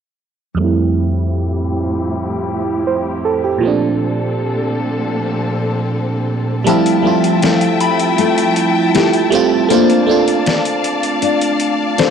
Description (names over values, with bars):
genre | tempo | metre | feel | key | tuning
contemporary R&B | 79 BPM | 4/4 | straight | unclear | A4 = 440 Hz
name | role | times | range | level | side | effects
FM electric piano | accompaniment | 0.5-12.1 s | F2 to C5 | -16 LUFS | right 5 dB | chorus, phaser, low-pass filter, cassette tape
rich studio string section | sustained chords | 0.6-12.1 s | A2 to A5 | -20 LUFS | left 3 dB | low-pass filter, cassette tape
nylon-string guitar | arpeggios | 6.7-12.1 s | F3 to C5 | -17 LUFS | left 10 dB | cassette tape, tape echo
dusty soul sampler-style drum kit | drums | 6.7-12.1 s | hi-hat, snare drum | -20 LUFS | left 2 dB | cassette tape
soft synth bell | texture | 6.7-9.9 s | A5 to B5 | -24 LUFS | left 6 dB | chorus, phaser, cassette tape, tape echo
room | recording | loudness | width
light reverb, small room ambience | home recording on cassette | -13 LUFS | side -7 dB against mid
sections
0.6-6.7 A section; 6.7-12.1 B section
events
filter sweep 0.6-6.7; kick muted 6.7-12.1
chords
0.6 Fmaj9; 3.6 Bbmaj9; 6.7 Fmaj9; 9.7 Bbmaj9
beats
| 0.59 1.35 2.11 2.87 | 3.63 4.39 5.15 5.91 | 6.67 7.43 8.19 8.95 | 9.70 10.46 11.22 11.98